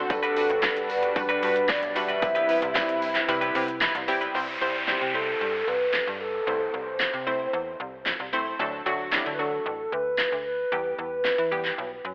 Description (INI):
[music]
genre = dance-pop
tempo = 113 BPM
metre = 4/4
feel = straight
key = unclear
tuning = A4 = 440 Hz
[part]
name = hollow square pluck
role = accompaniment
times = 0.0-12.1 s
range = E3 to C5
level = -32 LUFS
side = equal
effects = chorus
[part]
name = warm analog pad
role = sustained chords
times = 0.0-4.3 s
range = C3 to B4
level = -32 LUFS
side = equal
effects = subtle chorus, sidechain pumping
[part]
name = slap-like FM bass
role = bass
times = 0.0-12.1 s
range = G1 to E3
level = -37 LUFS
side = equal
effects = sidechain pumping
[part]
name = hollow clarinet-like synth lead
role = melody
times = 0.1-12.0 s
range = G4 to E5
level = -30 LUFS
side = equal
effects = chorus, tape echo
[part]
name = direct-recorded clean electric guitar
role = riff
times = 0.1-4.4 s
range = G3 to B4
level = -33 LUFS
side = equal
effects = lush chorus
[part]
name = pop drum kit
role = drums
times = 0.1-11.8 s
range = handclaps, hi-hat, kick drum, shaker, snare drum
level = -31 LUFS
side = equal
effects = overdrive
[part]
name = tambourine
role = percussion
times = 0.1-4.2 s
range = none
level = -51 LUFS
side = equal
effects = none
[part]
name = downlifter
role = sound effects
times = 4.3-8.6 s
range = none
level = -35 LUFS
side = equal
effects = none
[sound]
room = wet lush hall reverb, RT60 1.7 s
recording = dreamy mix soaked in reverb, telephone sound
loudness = -26 LUFS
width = mono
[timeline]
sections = 0.0-4.3 A section; 4.3-12.1 B section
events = kick muted 3.3-4.3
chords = 0.1 Gmaj7; 2.2 Cmaj7; 4.3 C; 6.5 Am/C; 8.6 D; 10.7 Em